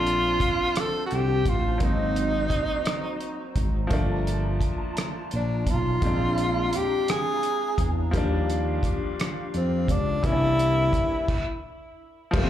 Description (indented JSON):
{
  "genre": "slow six-eight R&B",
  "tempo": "57 BPM (dotted quarters)",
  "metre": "6/8",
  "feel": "straight",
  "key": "unclear",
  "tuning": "A4 = 440 Hz",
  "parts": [
    { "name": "breathy tenor saxophone", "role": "melody", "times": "0.0-11.6 s", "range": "C4 to A4", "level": "-26 LUFS", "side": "equal", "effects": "slapback echo, tape echo" },
    { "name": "clear baby grand piano", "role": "accompaniment", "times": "0.0-12.5 s", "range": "E3 to F4", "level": "-31 LUFS", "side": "left 3 dB", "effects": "slapback echo" },
    { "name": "hollow soft pad", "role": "sustained chords", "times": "0.0-12.5 s", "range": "D4 to Bb5", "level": "-36 LUFS", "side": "equal", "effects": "ensemble chorus" },
    { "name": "smooth gliding synth bass", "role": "bass", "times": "0.0-12.5 s", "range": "F1 to F2", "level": "-26 LUFS", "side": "equal", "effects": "none" },
    { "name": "cloth-damped thuddy drum kit", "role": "drums", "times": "0.1-12.5 s", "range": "crash cymbal, hi-hat, kick drum, rim click", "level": "-27 LUFS", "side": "equal", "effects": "none" }
  ],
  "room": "light reverb",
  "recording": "live gig heard through the venue's PA, club reverb",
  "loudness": "-22 LUFS",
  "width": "side -11 dB against mid",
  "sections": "0.0-12.3 A section",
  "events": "stop 11.3-12.3",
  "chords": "0.0 Bbmaj9; 1.8 Ab9; 3.9 Gm9; 6.0 Bb7; 8.1 Ebmaj9; 10.2 C9",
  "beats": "0.76 | 1.81 2.86 | 3.92 4.97 | 6.02 7.07 | 8.12 9.18 | 10.23 11.28 | 12.34"
}